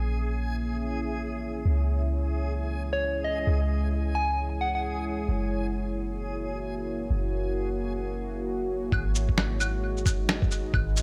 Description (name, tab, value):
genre	future garage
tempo	132 BPM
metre	4/4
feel	swing 61% on 16ths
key	unclear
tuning	A4 = 442 Hz
part	deep dark ambient pad	sustained chords	0.0-11.0 s	G#3 to E5	-35 LUFS	equal	chorus, built-in reverb, sidechain pumping
part	soft 808-style bass	bass	0.0-11.0 s	F#1 to C#2	-31 LUFS	equal	tube saturation
part	backwards swelling texture	texture	0.0-8.9 s	G#4	-43 LUFS	equal	built-in reverb
part	soft struck synth lead	melody	2.9-4.8 s	C#5 to G#5	-33 LUFS	equal	chorus, analog delay
part	electronic claves, shaker and snare drum	drums	8.9-11.0 s	none	-31 LUFS	equal	tape echo
part	electronic kick drum	drums	8.9-10.9 s	none	-29 LUFS	equal	none
room	moderate echo chamber reverb, RT60 1.9 s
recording	echo-heavy mix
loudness	-28 LUFS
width	mono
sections	0.0-8.9 A section; 8.9-11.0 B section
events	filter sweep on ambient pad 0.0-8.9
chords	0.0 A#dim; 1.7 C#m; 5.3 F#7; 8.9 G#m7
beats	0.29 0.74 1.20 | 1.65 2.11 2.56 3.02 | 3.47 3.93 4.38 4.83 | 5.29 5.74 6.20 6.65 | 7.11 7.56 8.02 8.47 | 8.93 9.38 9.84 10.29 | 10.74